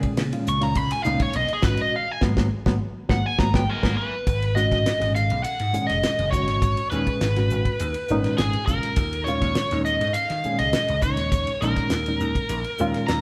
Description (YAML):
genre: electric jazz fusion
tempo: 102 BPM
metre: 4/4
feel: straight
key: G# dorian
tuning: A4 = 439 Hz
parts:
  - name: reed electric piano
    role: accompaniment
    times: 0.0-13.2 s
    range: A#2 to G#4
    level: -30 LUFS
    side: equal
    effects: fast tremolo
  - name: vintage slap bass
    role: bass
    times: 0.0-13.2 s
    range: F#1 to D#3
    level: -29 LUFS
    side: equal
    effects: none
  - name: damped 70s drum kit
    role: drums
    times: 0.0-13.2 s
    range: hi-hat, kick drum, ride cymbal, snare drum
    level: -29 LUFS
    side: equal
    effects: none
  - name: congas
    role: percussion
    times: 0.2-4.0 s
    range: none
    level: -35 LUFS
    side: equal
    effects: none
  - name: biting lead guitar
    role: melody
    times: 0.5-13.2 s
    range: G#4 to C#6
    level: -27 LUFS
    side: equal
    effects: overdrive
room: wet stone room reverb, RT60 1.4 s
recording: band playing live in one room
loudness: -23 LUFS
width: mono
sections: 0.0-4.3 A section; 4.3-13.2 B section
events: lead electric guitar solo 0.0-4.3; band accent 1.9-4.3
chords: 0.0 C#add9; 1.6 G#m7; 9.0 D#9sus4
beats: 0.18 0.77 1.35 | 1.94 2.52 3.11 3.69 | 4.28 4.86 5.45 6.04 | 6.62 7.21 7.80 8.38 | 8.97 9.56 10.15 10.73 | 11.32 11.91 12.50 13.09